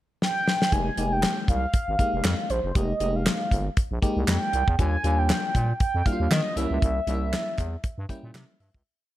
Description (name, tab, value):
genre	early-eighties boogie funk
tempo	118 BPM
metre	4/4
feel	swing 56% on 16ths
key	unclear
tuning	A4 = 440 Hz
part	mellow horn-like synth lead	melody	0.2-8.3 s	C5 to Ab5	-28 LUFS	right 1 dB	chorus, slapback echo
part	damped 70s drum kit	drums	0.2-8.8 s	handclaps, hi-hat, kick drum, snare drum	-25 LUFS	equal	gated reverb
part	FM electric piano	accompaniment	0.7-8.8 s	G3 to G5	-30 LUFS	left 1 dB	chorus
part	growling FM bass	bass	0.7-8.8 s	F1 to Eb3	-26 LUFS	equal	none
part	group handclap	percussion	1.2-8.5 s	none	-33 LUFS	right 4 dB	none
room	light reverb, studio reverb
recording	none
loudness	-22 LUFS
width	side -14 dB against mid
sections	0.0-0.7 pickup bar; 0.7-8.9 verse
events	drum fill 0.2-0.7; fade-out 6.8-8.9; FM electric piano fill 7.8-8.9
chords	0.0 N.C.; 0.7 Fm11; 4.8 Ebmaj9; 6.6 C7b9